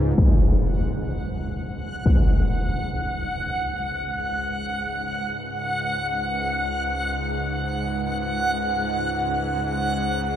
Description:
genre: dark ambient drone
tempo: free time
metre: none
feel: none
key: unclear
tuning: A4 = 439 Hz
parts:
  - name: bowed-like drone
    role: drone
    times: 0.0-10.4 s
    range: C#2 to G#2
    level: -28 LUFS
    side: equal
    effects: built-in reverb
  - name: impact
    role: percussion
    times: 0.2-2.2 s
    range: none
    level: -21 LUFS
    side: equal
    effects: low-pass filter on sfx
  - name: backwards swelling texture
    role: texture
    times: 1.1-10.4 s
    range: F#5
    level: -26 LUFS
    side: right 1 dB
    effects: built-in reverb
room: wet cathedral reverb, RT60 5.9 s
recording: dark, warm production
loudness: -22 LUFS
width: side -10 dB against mid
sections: 0.2-10.4 A section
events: fade-in on synth drone 0.2-10.4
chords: 0.2 C#5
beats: free time

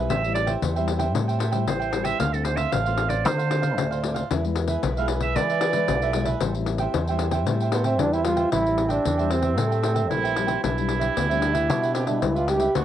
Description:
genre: samba and choro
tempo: 114 BPM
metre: 4/4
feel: straight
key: A minor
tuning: A4 = 440 Hz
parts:
  - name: cavaquinho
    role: accompaniment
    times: 0.0-12.8 s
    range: D4 to G5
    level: -30 LUFS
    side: right 8 dB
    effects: cassette tape
  - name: nylon-string guitar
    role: accompaniment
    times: 0.0-12.8 s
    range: A2 to F#4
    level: -31 LUFS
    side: left 8 dB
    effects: cassette tape
  - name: fingered electric bass with an envelope filter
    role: bass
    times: 0.0-12.8 s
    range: A1 to E3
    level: -26 LUFS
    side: equal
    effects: none
  - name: bright clarinet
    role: second line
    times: 0.1-12.8 s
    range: C4 to F5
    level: -27 LUFS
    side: right 7 dB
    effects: cassette tape
  - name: pandeiro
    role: percussion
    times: 0.1-12.8 s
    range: none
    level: -28 LUFS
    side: left 8 dB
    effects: none
  - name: breathy trombone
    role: melody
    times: 7.7-12.8 s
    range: A3 to G4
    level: -24 LUFS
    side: right 2 dB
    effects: cassette tape
room: light reverb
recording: home recording on cassette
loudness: -21 LUFS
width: side -11 dB against mid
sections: 0.0-8.5 A section; 8.5-12.8 B section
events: clarinet solo 0.0-8.5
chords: 0.1 Am7; 2.2 Dm7; 4.3 E; 6.4 Am7; 10.6 G6/B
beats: | 0.10 0.63 1.16 1.68 | 2.21 2.73 3.26 3.79 | 4.31 4.84 5.36 5.89 | 6.42 6.94 7.47 8.00 | 8.53 9.05 9.58 10.11 | 10.64 11.17 11.70 12.22 | 12.75

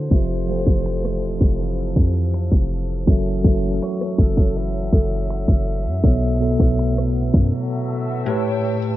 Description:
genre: contemporary R&B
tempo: 81 BPM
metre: 4/4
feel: straight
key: unclear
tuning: A4 = 442 Hz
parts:
  - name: raspy alto saxophone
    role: melody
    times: 0.0-8.3 s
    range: A4 to E5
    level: -32 LUFS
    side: equal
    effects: ping-pong delay
  - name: mellow tine electric piano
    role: accompaniment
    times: 0.0-9.0 s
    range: A2 to F5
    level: -23 LUFS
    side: equal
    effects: medium stereo tremolo
  - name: dark studio string section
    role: sustained chords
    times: 0.0-9.0 s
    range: B4 to E6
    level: -36 LUFS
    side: left 5 dB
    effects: none
  - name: picked steel-string acoustic guitar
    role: arpeggios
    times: 0.0-9.0 s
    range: F2 to F#4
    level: -31 LUFS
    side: equal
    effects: none
  - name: warm 808-style bass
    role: bass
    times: 0.0-7.5 s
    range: E1 to F#2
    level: -22 LUFS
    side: equal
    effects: none
  - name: trap drum kit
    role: drums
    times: 0.1-7.5 s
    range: finger snaps, hi-hat, kick drum, rim click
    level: -16 LUFS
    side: equal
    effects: overdrive
  - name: synth chime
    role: texture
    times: 4.9-8.4 s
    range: A4 to C#5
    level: -34 LUFS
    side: left 1 dB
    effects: none
room: small room ambience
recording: worn, warbling old tape, cassette tape, warbly pitch drift, low-pass filter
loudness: -17 LUFS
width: side -15 dB against mid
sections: 0.0-9.0 A section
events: filter sweep 0.0-9.0; break 7.5-9.0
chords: 0.1 Fmaj7; 3.1 F#m7; 6.0 B7sus4; 8.3 A7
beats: | 0.11 0.85 1.59 2.34 | 3.08 3.82 4.56 5.30 | 6.04 6.78 7.52 8.26

